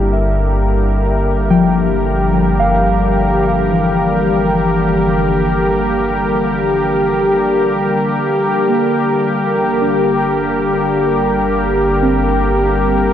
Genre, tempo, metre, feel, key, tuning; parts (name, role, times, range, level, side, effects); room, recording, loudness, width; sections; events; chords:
ambient; 54 BPM; 4/4; straight; G dorian; A4 = 440 Hz
warm analog pad; sustained chords; 0.0-13.1 s; D3 to Bb4; -14 LUFS; equal; chorus
muted felt-like synth keys; arpeggios; 0.0-13.1 s; E3 to G5; -19 LUFS; left 1 dB; chorus, tape echo
deep rumbling drone; bass; 0.0-13.1 s; G1; -21 LUFS; equal; built-in reverb, phaser
wet huge ambient reverb, RT60 8.6 s; -12 LUFS; side -10 dB against mid
0.0-13.1 A section
fade-in on analog synth pad 0.0-13.1
0.0 Gm